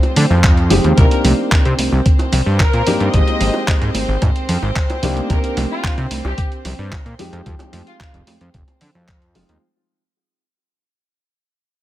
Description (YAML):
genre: nu-disco, nu disco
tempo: 111 BPM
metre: 4/4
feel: straight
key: unclear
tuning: A4 = 440 Hz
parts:
  - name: dark grand piano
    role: accompaniment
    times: 0.0-9.6 s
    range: F3 to G4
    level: -22 LUFS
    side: left 1 dB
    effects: sidechain pumping, tape echo
  - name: warm chamber string section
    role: sustained chords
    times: 0.0-9.6 s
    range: C4 to C5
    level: -27 LUFS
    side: equal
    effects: sidechain pumping
  - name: dusty soul sampler-style drum kit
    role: drums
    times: 0.0-9.6 s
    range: handclaps, hi-hat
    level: -23 LUFS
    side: equal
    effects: none
  - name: bongos and congas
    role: percussion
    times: 0.0-9.6 s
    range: none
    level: -24 LUFS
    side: right 3 dB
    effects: none
  - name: fat analog bass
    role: bass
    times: 0.2-9.6 s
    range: F1 to D3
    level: -17 LUFS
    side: equal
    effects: none
  - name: electronic kick drum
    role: drums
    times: 0.4-9.2 s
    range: none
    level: -15 LUFS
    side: equal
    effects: none
  - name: dark studio violin section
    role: melody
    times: 1.0-8.1 s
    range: F4 to Eb5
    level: -25 LUFS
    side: left 1 dB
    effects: tape echo
room: studio reverb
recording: none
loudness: -13 LUFS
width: side -14 dB against mid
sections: 0.0-9.6 A section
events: drop 0.0-9.6; fade-out 1.0-9.6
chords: 0.0 Fm7; 1.0 Cm7; 3.1 Abmaj7; 5.0 Cm7; 7.2 Fm7